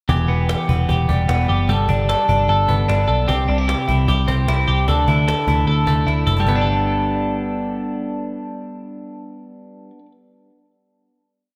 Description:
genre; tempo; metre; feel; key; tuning
jangly indie pop; 151 BPM; 4/4; straight; G major; A4 = 440 Hz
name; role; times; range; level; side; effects
twelve-string electric guitar; arpeggios; 0.1-10.1 s; E2 to A4; -22 LUFS; equal; analog delay
vintage muted picked electric bass; bass; 0.1-9.5 s; E1 to D2; -21 LUFS; equal; none
cajon; drums; 0.1-6.6 s; none; -28 LUFS; equal; none
room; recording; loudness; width
moderate lush hall reverb, RT60 2.0 s; dreamy mix soaked in reverb; -18 LUFS; mono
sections
0.1-6.5 pre-chorus; 6.5-9.6 final chord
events
drum fill 6.1-6.5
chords
0.1 Em; 1.7 Gadd9; 3.3 C; 4.9 Dsus2; 6.5 Gadd9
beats
| 0.10 0.50 0.90 1.29 | 1.70 2.10 2.49 2.89 | 3.29 3.69 4.09 4.49 | 4.88 5.28 5.67 6.07 | 6.46 6.86 7.25 7.65 | 8.04 8.44 8.83 9.22

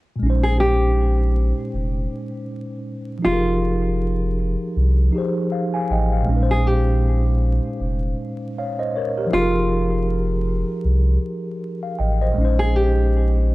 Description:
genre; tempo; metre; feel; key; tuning
lo-fi hip hop; 79 BPM; 4/4; swing 56% on 16ths; Bb dorian; A4 = 439 Hz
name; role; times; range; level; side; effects
mellow tine electric piano; accompaniment; 0.2-13.5 s; Bb2 to Ab5; -23 LUFS; equal; medium stereo tremolo, low-pass filter
sub bass with octave; bass; 0.2-13.5 s; F1 to C2; -19 LUFS; equal; none
nylon-string guitar; melody; 0.4-13.5 s; F4 to Ab4; -23 LUFS; equal; low-pass filter
room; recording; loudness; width
little or no reverb; vinyl crackle; -18 LUFS; side -19 dB against mid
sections
0.2-13.5 A section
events
stop 0.0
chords
0.2 Bbm11; 3.2 Fm11; 6.3 Bbm11; 9.3 Fm11; 12.4 Bbm11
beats
| 0.21 0.97 1.73 2.49 | 3.25 4.01 4.77 5.53 | 6.29 7.04 7.80 8.56 | 9.32 10.08 10.84 11.60 | 12.36 13.12

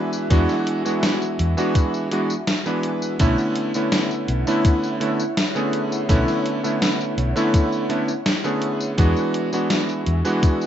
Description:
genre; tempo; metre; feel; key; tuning
vaporwave; 83 BPM; 4/4; straight; B dorian; A4 = 441 Hz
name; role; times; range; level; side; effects
bright electric grand piano; accompaniment; 0.0-10.7 s; D3 to B4; -21 LUFS; right 1 dB; wide subtle chorus, analog delay
soft string machine; sustained chords; 0.0-10.7 s; E4 to G#5; -30 LUFS; left 1 dB; ensemble chorus
gated 80s digital drum machine; drums; 0.1-10.7 s; hi-hat, snare drum, tambourine; -24 LUFS; left 1 dB; gated reverb, gated reverb snare
hollow-body short-scale fingered electric bass; bass; 0.3-10.2 s; B1 to E2; -21 LUFS; equal; none
electronic kick drum; drums; 0.3-10.6 s; none; -17 LUFS; equal; none
room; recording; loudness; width
light reverb; rough home demo mix, nothing above 7.8 kHz; -18 LUFS; side -10 dB against mid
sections
0.0-10.7 A section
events
none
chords
0.0 E9; 3.2 Bm11; 9.0 E9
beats
| 0.31 1.03 1.75 2.48 | 3.20 3.92 4.65 5.37 | 6.09 6.82 7.54 8.26 | 8.98 9.71 10.43

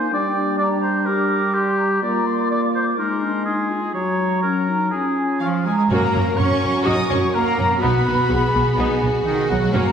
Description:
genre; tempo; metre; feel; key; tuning
cinematic; 125 BPM; 4/4; straight; F# major from 5.9 s; A4 = 440 Hz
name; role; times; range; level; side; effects
mellow clarinet; second line; 0.0-5.7 s; Db4 to G4; -26 LUFS; left 1 dB; none
mellow large flute ensemble; second line; 0.0-9.9 s; D#5 to D#6; -25 LUFS; equal; none
warm oboe; second line; 0.0-9.9 s; D#4 to D#5; -24 LUFS; equal; none
mellow French horn section; sustained chords; 0.0-9.9 s; Gb3 to A#4; -23 LUFS; equal; none
warm symphonic violin section; second line; 5.4-9.9 s; D#5 to D#6; -30 LUFS; left 3 dB; none
rich symphonic cello section; bass; 5.4-9.9 s; D#3 to D#4; -23 LUFS; right 2 dB; none
warm symphonic violin section; melody; 5.9-9.9 s; F#4 to A#4; -30 LUFS; left 4 dB; none
rich symphonic viola section; accompaniment; 5.9-9.9 s; F#3 to F#4; -26 LUFS; equal; none
warm symphonic double bass section; bass; 5.9-9.8 s; B1 to F#2; -22 LUFS; right 2 dB; none
room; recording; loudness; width
wet scoring stage reverb, RT60 2.1 s; heard from further back in the room; -17 LUFS; side -7 dB against mid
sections
0.0-5.9 A section; 5.9-9.9 B section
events
none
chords
0.1 Gm; 2.0 Bb; 3.0 Ab; 3.9 Gb; 4.9 Db; 5.9 F#; 7.8 B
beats
| 0.12 0.59 1.07 1.55 | 2.03 2.50 2.98 3.46 | 3.94 4.43 4.92 5.41 | 5.89 6.37 6.86 7.33 | 7.81 8.29 8.77 9.25 | 9.73

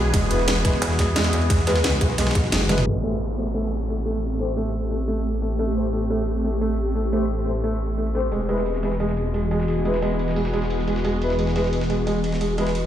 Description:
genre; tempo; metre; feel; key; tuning
dark technical drum and bass; 176 BPM; 4/4; straight; unclear; A4 = 438 Hz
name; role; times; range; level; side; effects
swarming drone; sustained chords; 0.0-12.9 s; E3 to G#4; -27 LUFS; equal; built-in reverb, sidechain pumping
felt-muted upright piano; arpeggios; 0.0-12.7 s; G#3 to A3; -26 LUFS; right 2 dB; sidechain pumping, low-pass filter, dub echo
wide detuned saw bass; bass; 0.0-0.6, 2.9-12.9 s; E1 to B1; -26 LUFS; equal; chorus, overdrive
breakbeat sampler-style drum kit; drums; 0.1-2.9, 8.3-12.8 s; hi-hat, ride cymbal, snare drum; -33 LUFS; equal; high-pass filter on snare, high-pass filter on cymbals, high-pass filter on hats
drum and bass drum kit; drums; 0.1-2.9 s; crash cymbal, hi-hat, ride cymbal, rim click, snare drum, toms; -26 LUFS; equal; overdrive
electronic kick drum; drums; 0.1-2.4 s; none; -21 LUFS; equal; none
mellow brass ensemble; stabs; 0.3-12.7 s; G#3 to C5; -30 LUFS; left 3 dB; low-pass filter, dub echo
metallic wobble bass; bass; 0.8-2.9 s; F#1 to E2; -22 LUFS; equal; chorus
downlifter; sound effects; 2.9-5.6 s; none; -39 LUFS; equal; none
room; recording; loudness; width
moderate lush hall reverb, RT60 2.0 s; played on a big sound system in a bare room, stone room reverb, low-pass filter; -20 LUFS; side -11 dB against mid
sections
0.0-2.9 A section; 2.9-12.9 B section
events
drop 0.0-2.9; band accent 2.5; drum fill 2.6; filter sweep on felt piano 2.9-12.9; filter sweep on brass ensemble 2.9-12.9; filter sweep 2.9-12.9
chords
0.0 E; 2.9 Am7; 8.3 E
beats
| 0.14 0.48 0.82 1.16 | 1.50 1.84 2.18 2.52 | 2.86 3.21 3.55 3.89 | 4.23 4.57 4.91 5.25 | 5.59 5.93 6.27 6.61 | 6.96 7.30 7.64 7.98 | 8.32 8.66 9.00 9.34 | 9.68 10.02 10.36 10.71 | 11.05 11.39 11.73 12.07 | 12.41 12.75

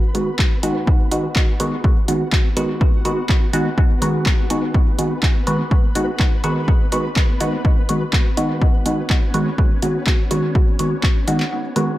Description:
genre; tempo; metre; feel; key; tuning
dub techno; 124 BPM; 4/4; straight; G# minor; A4 = 440 Hz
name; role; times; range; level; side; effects
flickering grainy texture; texture; 0.0-12.0 s; B3 to B4; -30 LUFS; left 1 dB; built-in reverb, sidechain pumping
filtered dub chord stab; stabs; 0.1-12.0 s; D#3 to F#4; -21 LUFS; equal; chorus, phaser, sidechain pumping, dub echo
punchy analog drum machine; drums; 0.1-11.9 s; handclaps, hi-hat; -25 LUFS; equal; none
electronic kick drum; drums; 0.4-11.1 s; none; -16 LUFS; equal; none
room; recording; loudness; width
light reverb; dark, warm production; -16 LUFS; side -16 dB against mid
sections
0.0-12.0 A section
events
break 11.5-12.0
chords
0.0 G#m7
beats
0.39 | 0.87 1.36 1.84 2.33 | 2.81 3.29 3.78 4.26 | 4.74 5.23 5.71 6.20 | 6.68 7.16 7.65 8.13 | 8.62 9.10 9.58 10.07 | 10.55 11.03 11.52

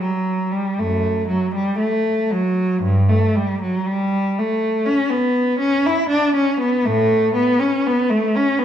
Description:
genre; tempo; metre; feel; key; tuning
classical, baroque-style suite movement for unaccompanied cello; 60 BPM; 4/4; rubato; unclear; A4 = 443 Hz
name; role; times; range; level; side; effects
warm cello; solo; 0.0-8.6 s; F#2 to E4; -16 LUFS; equal; none
room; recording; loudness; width
moderate recital hall reverb, RT60 1.5 s; none; -16 LUFS; side -10 dB against mid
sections
0.0-8.6 A section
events
none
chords
none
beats
0.77 1.79 | 2.83 3.87 4.86 5.85 | 6.85 7.85

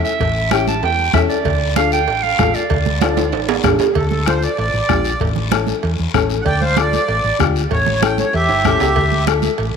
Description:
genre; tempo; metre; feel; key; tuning
latin, cumbia; 192 BPM; 4/4; straight; D minor, D harmonic minor from 4.0 s; A4 = 439 Hz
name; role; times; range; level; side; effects
warm clarinet; second line; 0.0-3.8 s; D5 to A5; -20 LUFS; right 6 dB; none
nylon-string guitar; accompaniment; 0.0-9.5 s; C#4 to A4; -22 LUFS; left 11 dB; none
guiro; percussion; 0.1-9.8 s; none; -30 LUFS; left 11 dB; none
hollow-body short-scale fingered electric bass; bass; 0.2-9.7 s; G1 to E2; -20 LUFS; equal; none
bombo; percussion; 0.2-9.4 s; none; -23 LUFS; left 5 dB; none
congas; percussion; 0.2-9.8 s; none; -25 LUFS; right 9 dB; none
cowbell and timbales; percussion; 0.2-9.7 s; none; -23 LUFS; right 11 dB; none
accordion; melody; 3.9-9.3 s; G4 to G5; -19 LUFS; right 1 dB; none
room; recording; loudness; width
moderate echo chamber reverb, RT60 2.5 s; 1960s-style stereo with parts hard left and right; -14 LUFS; side -6 dB against mid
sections
0.0-4.0 A section; 4.0-9.8 B section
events
clarinet solo 0.0-4.0; drum fill 3.0-4.0, 8.5-9.0; accordion solo 4.0-9.8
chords
0.0 A7; 1.5 Dm; 5.2 A; 6.5 Dm; 7.7 A7; 9.0 Dm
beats
| 0.20 0.52 0.83 1.14 | 1.45 1.77 2.08 2.39 | 2.71 3.02 3.33 3.64 | 3.96 4.27 4.58 4.89 | 5.21 5.52 5.83 6.15 | 6.46 6.77 7.08 7.40 | 7.71 8.02 8.34 8.65 | 8.96 9.27 9.58

